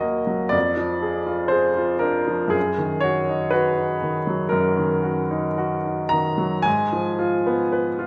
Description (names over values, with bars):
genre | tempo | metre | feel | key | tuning
classical, romantic nocturne for solo piano | 56-61 BPM | 4/4 | rubato | Eb minor | A4 = 442 Hz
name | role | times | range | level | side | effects
clear baby grand piano | solo | 0.0-8.1 s | Eb2 to Bb5 | -22 LUFS | equal | none
room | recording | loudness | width
moderate concert hall reverb, RT60 2.0 s | none | -22 LUFS | mono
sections
0.0-8.1 A section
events
none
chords
0.0 Ebm; 0.6 Ddim/F; 2.6 Ebm/Gb; 6.7 Fdim/Ab